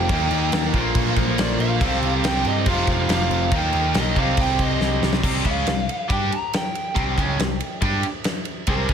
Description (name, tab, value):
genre	hard rock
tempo	140 BPM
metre	4/4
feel	straight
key	C minor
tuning	A4 = 440 Hz
part	lead guitar through a small cranked amp	melody	0.0-8.9 s	Bb4 to Bb5	-27 LUFS	equal	overdrive, slapback echo
part	overdriven tonewheel organ	sustained chords	0.0-5.2 s	F3 to F5	-34 LUFS	equal	none
part	cranked stack guitar	riff	0.0-8.9 s	F2 to G4	-23 LUFS	equal	overdrive
part	picked electric bass	bass	0.0-8.9 s	F1 to G2	-25 LUFS	equal	none
part	big rock drum kit	drums	0.1-8.9 s	crash cymbal, kick drum, ride cymbal, snare drum	-24 LUFS	equal	none
room	light reverb, studio reverb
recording	none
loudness	-19 LUFS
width	side -8 dB against mid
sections	0.0-5.2 A section; 5.2-8.9 B section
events	drum fill 4.8-5.2; lead electric guitar solo 5.2-8.9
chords	0.1 Eb; 0.7 Bb5; 1.8 C5; 2.7 F5; 3.5 Eb; 4.2 Cm; 5.2 C5